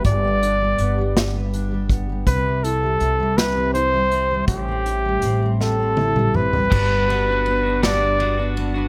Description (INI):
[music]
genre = six-eight pop ballad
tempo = 54 BPM (dotted quarters)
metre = 6/8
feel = straight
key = G major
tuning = A4 = 440 Hz
[part]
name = fingerpicked steel-string acoustic guitar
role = accompaniment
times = 0.0-8.9 s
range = G2 to B4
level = -28 LUFS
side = equal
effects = double-tracked
[part]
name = upright bass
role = bass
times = 0.0-8.9 s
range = G1 to C2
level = -26 LUFS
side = equal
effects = none
[part]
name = unplugged drum kit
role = drums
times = 0.0-8.7 s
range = crash cymbal, hi-hat, kick drum, ride cymbal, snare drum, toms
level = -24 LUFS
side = equal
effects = none
[part]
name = breathy flugelhorn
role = melody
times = 0.1-8.5 s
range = G4 to D5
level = -23 LUFS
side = equal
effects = none
[part]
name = twelve-string electric guitar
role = arpeggios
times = 6.7-8.9 s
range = G3 to F#4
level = -30 LUFS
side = equal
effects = none
[sound]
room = small room reverb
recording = none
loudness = -20 LUFS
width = mono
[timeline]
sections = 0.0-6.7 A section; 6.7-8.9 B section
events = drum fill 5.6-6.7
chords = 0.1 G; 2.3 C; 4.5 Am7; 6.7 Gmaj7